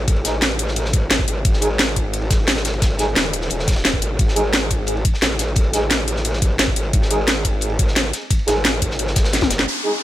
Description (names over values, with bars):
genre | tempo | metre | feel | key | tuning
dark technical drum and bass | 175 BPM | 4/4 | straight | unclear | A4 = 440 Hz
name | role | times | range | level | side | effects
growl bass | bass | 0.0-9.7 s | D#1 to A1 | -22 LUFS | equal | distortion, chorus, overdrive
crunchy breakbeat drum kit | drums | 0.1-9.6 s | ride cymbal, snare drum | -29 LUFS | equal | high-pass filter on cymbals, high-pass filter on snare, high-pass filter on room
drum and bass drum kit | drums | 0.1-9.7 s | hi-hat, snare drum, toms | -20 LUFS | left 1 dB | low-pass filter on hats, low-pass filter on snare, low-pass filter on cymbals, low-pass filter on toms, low-pass filter on room
electronic kick drum | drums | 0.1-9.5 s | none | -19 LUFS | equal | none
dark brass ensemble | stabs | 0.2-9.9 s | G#3 to G#4 | -25 LUFS | right 1 dB | tape echo
downlifter | sound effects | 9.7-10.0 s | none | -22 LUFS | equal | none
room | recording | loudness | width
digital ambience | none | -16 LUFS | side -13 dB against mid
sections
0.0-9.7 A section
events
drum fill 9.3-9.7; band accent 9.6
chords
0.0 G#5